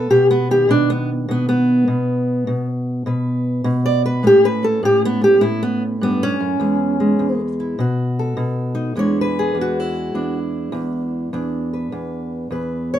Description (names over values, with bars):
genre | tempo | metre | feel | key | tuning
acoustic country blues, solo or duo | 102 BPM | 4/4 | swing 66% on 8ths | E mixolydian | A4 = 441 Hz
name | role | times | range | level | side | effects
fingerpicked steel-string acoustic guitar | solo | 0.0-13.0 s | E2 to D5 | -16 LUFS | equal | none
room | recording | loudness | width
light reverb | minimal, uncompressed stereo recording | -16 LUFS | side -10 dB against mid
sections
0.0-9.0 A section; 9.0-13.0 B section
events
steel-string acoustic guitar solo 0.0-9.0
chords
0.0 B; 4.2 A7; 6.6 E; 7.8 B7; 9.0 E7